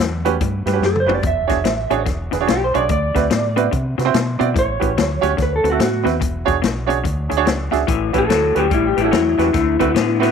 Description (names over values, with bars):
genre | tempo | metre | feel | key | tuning
electric blues shuffle | 144 BPM | 4/4 | swing 63% on 8ths | A mixolydian | A4 = 440 Hz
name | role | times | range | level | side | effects
electric guitar through a small old amp | riff | 0.0-10.3 s | E2 to C4 | -24 LUFS | left 14 dB | none
deep dub fingered electric bass | bass | 0.0-10.3 s | E1 to C3 | -23 LUFS | equal | none
swinging big-band drum kit | drums | 0.0-10.3 s | hi-hat, kick drum, snare drum, toms | -22 LUFS | left 3 dB | none
clear upright piano | accompaniment | 0.2-10.3 s | C4 to E5 | -21 LUFS | right 12 dB | none
electric slide guitar | melody | 0.9-10.3 s | E4 to E5 | -19 LUFS | equal | none
room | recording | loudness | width
moderate spring reverb, RT60 1.9 s, small room ambience | 1960s-style stereo with parts hard left and right | -15 LUFS | side -7 dB against mid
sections
0.0-7.9 A section; 7.9-10.3 B section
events
drum fill 0.8-1.2; electric slide guitar solo 7.9-10.3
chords
0.0 A13; 1.2 E13; 2.9 D13; 4.6 A13; 5.4 D13; 6.2 E13; 7.9 A13; 9.5 D13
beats
0.40 0.82 | 1.23 1.65 2.06 2.48 | 2.89 3.31 3.72 4.14 | 4.55 4.97 5.38 5.80 | 6.21 6.63 7.04 7.46 | 7.88 8.29 8.71 9.12 | 9.54 9.96